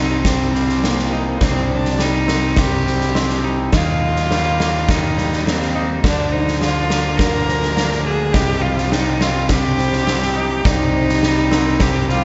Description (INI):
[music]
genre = post-rock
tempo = 104 BPM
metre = 4/4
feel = straight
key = C minor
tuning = A4 = 441 Hz
[part]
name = bright cello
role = melody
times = 0.0-12.2 s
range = Bb3 to Bb4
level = -23 LUFS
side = equal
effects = slapback echo, analog delay
[part]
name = felt-muted upright piano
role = arpeggios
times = 0.0-12.2 s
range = Bb4 to Eb5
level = -35 LUFS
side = equal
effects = none
[part]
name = twangy electric guitar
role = arpeggios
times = 0.0-12.2 s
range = C3 to Eb4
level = -29 LUFS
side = equal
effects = slapback echo, analog delay
[part]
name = fuzz fingered electric bass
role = bass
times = 0.0-12.2 s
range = C2 to Eb2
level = -22 LUFS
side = equal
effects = overdrive
[part]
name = big rock drum kit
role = drums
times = 0.2-12.2 s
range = kick drum, snare drum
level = -22 LUFS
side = equal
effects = none
[sound]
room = moderate lush hall reverb, RT60 2.4 s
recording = big arena sound, nothing above 7.8 kHz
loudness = -17 LUFS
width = mono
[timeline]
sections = 0.0-12.2 A section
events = none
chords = 0.0 Cm; 3.7 Eb; 6.0 Bb/D; 8.4 Cm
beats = 0.25 0.83 | 1.41 1.99 2.57 3.15 | 3.73 4.31 4.89 5.47 | 6.04 6.62 7.20 7.78 | 8.35 8.93 9.50 10.08 | 10.65 11.23 11.81